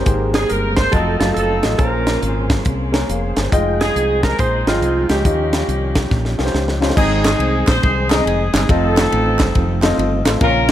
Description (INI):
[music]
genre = uptempo gospel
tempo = 139 BPM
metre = 4/4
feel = swing 64% on 8ths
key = Ab major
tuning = A4 = 440 Hz
[part]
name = warm upright piano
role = accompaniment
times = 0.0-10.7 s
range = Ab2 to Ab5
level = -21 LUFS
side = left 1 dB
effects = none
[part]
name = muted French horn section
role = sustained chords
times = 0.0-7.0 s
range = Eb3 to F5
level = -32 LUFS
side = right 1 dB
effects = none
[part]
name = tonewheel organ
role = sustained chords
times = 0.0-10.7 s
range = Db3 to G5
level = -26 LUFS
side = right 2 dB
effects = slow rotary speaker, chorus vibrato
[part]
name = fingered electric bass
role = bass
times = 0.0-10.7 s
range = F1 to Eb2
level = -20 LUFS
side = equal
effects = none
[part]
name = tight funk drum kit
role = drums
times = 0.1-10.7 s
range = crash cymbal, hi-hat, kick drum, ride cymbal, snare drum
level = -19 LUFS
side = equal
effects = none
[part]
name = clean lap steel guitar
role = melody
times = 0.4-6.5 s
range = F4 to C5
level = -22 LUFS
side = right 3 dB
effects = none
[part]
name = mellow horn section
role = melody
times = 0.4-10.7 s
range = Ab3 to C5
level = -22 LUFS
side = equal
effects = tape echo
[part]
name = group handclap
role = percussion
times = 7.3-10.7 s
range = none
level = -28 LUFS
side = right 3 dB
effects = none
[sound]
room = light reverb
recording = none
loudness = -14 LUFS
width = side -12 dB against mid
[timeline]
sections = 0.0-7.0 A section; 7.0-10.7 B section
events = drum fill 6.1-7.0; upright piano fill 9.8-10.4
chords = 0.1 Abmaj9; 0.9 F7b9; 1.8 Bbm9; 3.5 Fm9; 5.2 Eb9; 7.0 Ab; 8.7 F7